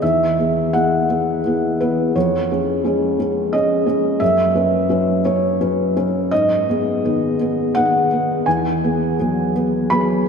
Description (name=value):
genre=neoclassical minimalist piano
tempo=84 BPM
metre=3/4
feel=rubato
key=unclear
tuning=A4 = 436 Hz
part: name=felt-muted upright piano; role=solo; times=0.0-10.3 s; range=E2 to B5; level=-16 LUFS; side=equal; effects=slapback echo
room=wet cathedral reverb, RT60 5.5 s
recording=in a vast, echoing space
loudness=-16 LUFS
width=side -6 dB against mid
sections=0.0-10.3 A section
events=none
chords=0.0 Eadd9; 2.1 C#/E#; 4.2 F#7sus4; 6.3 G#m; 8.5 Eadd9